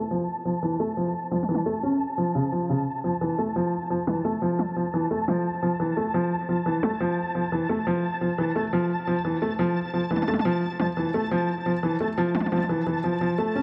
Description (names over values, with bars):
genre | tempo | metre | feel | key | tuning
IDM | 87 BPM | 4/4 | straight | F major | A4 = 439 Hz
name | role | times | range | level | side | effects
flickering grainy texture | texture | 0.0-13.6 s | A5 | -35 LUFS | equal | built-in reverb
felt-muted upright piano | arpeggios | 0.1-13.6 s | C#3 to C#4 | -27 LUFS | equal | low-pass filter, digital delay
electronic toms | drums | 1.3-12.7 s | none | -31 LUFS | equal | overdrive, low-pass filter on toms
room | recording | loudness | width
moderate lush hall reverb, RT60 2.5 s | low-pass filter | -26 LUFS | mono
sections
0.0-13.6 A section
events
filter sweep on felt piano 0.0-13.6; filter sweep 0.0-13.6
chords
0.0 N.C.; 2.9 Fmaj7; 8.4 A5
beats
| 0.11 0.80 1.49 2.18 | 2.87 3.56 4.25 4.93 | 5.62 6.31 7.00 7.69 | 8.38 9.07 9.76 10.45 | 11.14 11.83 12.52 13.21